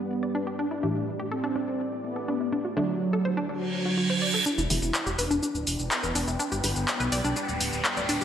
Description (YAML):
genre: melodic techno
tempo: 124 BPM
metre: 4/4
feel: straight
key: E minor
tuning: A4 = 440 Hz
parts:
  - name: mellow synth brass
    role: melody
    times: 0.0-8.2 s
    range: F#3 to E4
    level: -30 LUFS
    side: right 1 dB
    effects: chorus, phaser, digital delay
  - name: deep dark ambient pad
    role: sustained chords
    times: 0.0-8.2 s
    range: D3 to G5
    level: -36 LUFS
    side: equal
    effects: chorus, built-in reverb
  - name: filtered dub chord stab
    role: stabs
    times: 0.0-8.2 s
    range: G2 to G4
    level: -32 LUFS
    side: right 1 dB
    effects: ensemble chorus, digital delay
  - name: analog pluck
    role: arpeggios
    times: 0.2-8.2 s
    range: D4 to D5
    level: -32 LUFS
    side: equal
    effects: chorus, cassette tape, digital delay
  - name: reverse cymbal and riser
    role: sound effects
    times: 3.7-8.2 s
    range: none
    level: -32 LUFS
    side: right 2 dB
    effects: none
  - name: house drum kit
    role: drums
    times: 4.5-8.2 s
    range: handclaps, hi-hat, shaker, toms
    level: -28 LUFS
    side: left 1 dB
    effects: overdrive, high-pass filter on perc, low-pass filter on perc, high-pass filter on hats, low-pass filter on hats, high-pass filter on toms, low-pass filter on toms, high-pass filter on snare, low-pass filter on snare, high-pass filter on room, low-pass filter on room, gated reverb
  - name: dark detuned saw bass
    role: bass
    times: 4.6-8.2 s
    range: D1 to B1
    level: -31 LUFS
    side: equal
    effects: none
room: wet lush hall reverb, RT60 2.0 s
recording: bright 1980s-style digital production, high-pass filter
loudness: -25 LUFS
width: side -9 dB against mid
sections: 0.0-4.5 A section; 4.5-8.2 B section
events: filter sweep on analog polysynth 0.0-4.5; filter sweep on synth stab 0.0-4.5; reverse cymbal 3.7-4.5; build-up 4.5-8.2; riser 4.5-8.2; filter sweep on synth pluck 4.5-8.2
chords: 0.0 G; 0.6 A7sus4; 2.5 D7; 4.5 Em7; 6.4 G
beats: 0.11 | 0.59 1.07 1.56 2.04 | 2.52 3.01 3.49 3.98 | 4.46 4.94 5.43 5.91 | 6.40 6.88 7.36 7.85